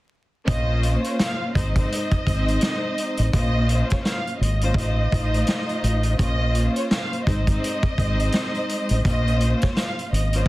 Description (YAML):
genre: hip hop, boom-bap hip-hop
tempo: 84 BPM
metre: 4/4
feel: swing 59% on 16ths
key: Bb minor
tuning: A4 = 438 Hz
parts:
  - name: warm symphonic violin section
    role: melody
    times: 0.5-10.5 s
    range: Db5 to F5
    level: -28 LUFS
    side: right 1 dB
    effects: high-pass filter, low-pass filter
  - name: warm studio string section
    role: accompaniment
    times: 0.5-10.5 s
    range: Ab3 to C5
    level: -27 LUFS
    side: left 1 dB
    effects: cassette tape, high-pass filter, low-pass filter
  - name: fingered electric bass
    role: bass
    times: 0.5-10.5 s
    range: Ab1 to Bb1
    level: -21 LUFS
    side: equal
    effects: none
  - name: vintage drum kit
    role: drums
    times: 0.5-10.5 s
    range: hi-hat, kick drum, snare drum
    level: -24 LUFS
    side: equal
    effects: none
room: small room ambience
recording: dense, heavily limited modern master, vinyl crackle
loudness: -20 LUFS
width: side -18 dB against mid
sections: 0.5-10.5 A section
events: none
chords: 0.5 Bbmadd9; 1.5 Ab; 3.3 Bbmadd9; 4.8 F7/A; 6.2 Bbmadd9; 7.3 Ab; 9.0 Bbmadd9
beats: | 0.48 1.19 1.90 2.62 | 3.33 4.05 4.76 5.48 | 6.19 6.90 7.62 8.33 | 9.05 9.76 10.48